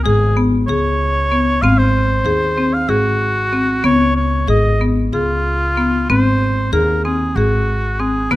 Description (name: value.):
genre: contemporary instrumental, chamber music in an uneven meter.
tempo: 190 BPM (eighths).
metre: 7/8.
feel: straight.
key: unclear.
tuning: A4 = 440 Hz.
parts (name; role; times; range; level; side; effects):
warm oboe; melody; 0.0-8.4 s; F4 to F5; -19 LUFS; equal; none.
marimba with hard mallets; arpeggios; 0.1-8.4 s; Cb4 to Ab4; -18 LUFS; left 2 dB; none.
upright bass; bass; 0.1-8.4 s; Ab1 to Eb2; -18 LUFS; equal; none.
room: light reverb.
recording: close, detailed microphones, lossy compression artefacts.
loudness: -13 LUFS.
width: side -16 dB against mid.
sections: 0.0-8.4 A section.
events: none.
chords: 0.0 Db5; 1.6 Ab7; 3.8 Db7; 6.1 Ab7.